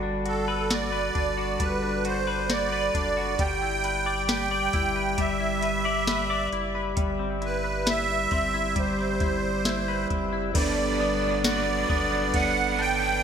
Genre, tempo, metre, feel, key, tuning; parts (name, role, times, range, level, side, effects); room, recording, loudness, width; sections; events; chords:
dream pop; 67 BPM; 4/4; straight; G major; A4 = 440 Hz
mellow tonewheel organ; sustained chords; 0.0-13.2 s; G3 to E5; -31 LUFS; right 1 dB; slow rotary speaker
semi-hollow electric guitar; arpeggios; 0.0-13.2 s; G3 to D5; -30 LUFS; left 4 dB; wide subtle chorus, digital delay
saturated sub bass; bass; 0.0-13.2 s; F#1 to G1; -34 LUFS; left 1 dB
musette accordion; melody; 0.3-13.2 s; A4 to G5; -27 LUFS; right 4 dB; digital delay
soft vintage rhythm box; drums; 0.3-12.6 s; crash cymbal, hi-hat, kick drum, ride cymbal, snare drum, tambourine; -29 LUFS; left 1 dB; gated reverb
cranked stack guitar; accompaniment; 10.5-13.2 s; G2 to B4; -31 LUFS; right 2 dB; overdrive, tremolo, analog chorus
moderate lush hall reverb, RT60 2.3 s; bright 1980s-style digital production; -23 LUFS; side -7 dB against mid
0.0-10.6 A section; 10.6-13.2 B section
0.0 Gmaj7; 3.4 Em7/G; 7.0 Cmaj7/G; 10.6 Gmaj7